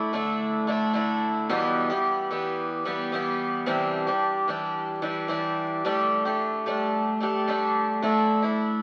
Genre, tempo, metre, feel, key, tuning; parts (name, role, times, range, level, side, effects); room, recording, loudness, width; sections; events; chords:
pop; 110 BPM; 4/4; straight; G major; A4 = 436 Hz
picked twelve-string acoustic guitar; solo; 0.0-8.8 s; E2 to G4; -26 LUFS; equal
wet studio reverb, RT60 0.6 s; very old 78 rpm record, vinyl crackle; -26 LUFS; mono
0.0-8.8 A section
0.0 Dsus2; 1.5 Em; 3.7 Cadd9; 5.8 Gsus2; 8.0 Dsus2